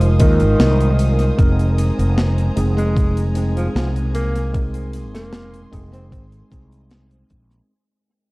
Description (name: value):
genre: vaporwave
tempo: 76 BPM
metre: 4/4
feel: straight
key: unclear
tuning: A4 = 441 Hz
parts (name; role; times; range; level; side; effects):
- breathy tenor saxophone; melody; 0.0-6.3 s; Eb3 to C4; -25 LUFS; equal; tape echo
- tine electric piano; accompaniment; 0.0-7.7 s; Ab3 to C5; -24 LUFS; equal; lush chorus, tape echo
- rich chamber string section; sustained chords; 0.0-7.7 s; C5 to Eb6; -35 LUFS; right 1 dB; none
- mellow fretless electric bass; bass; 0.0-7.6 s; F1 to Eb2; -17 LUFS; equal; none
- tight metal drum kit; drums; 0.0-7.7 s; hi-hat, snare drum; -25 LUFS; equal; tape echo
- electronic kick drum; drums; 0.2-7.5 s; none; -16 LUFS; equal; none
room: studio ambience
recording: echo-heavy mix, cassette tape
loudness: -15 LUFS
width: side -24 dB against mid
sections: 0.0-7.7 A section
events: fade-out 0.0-7.7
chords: 0.0 Bb9sus4/F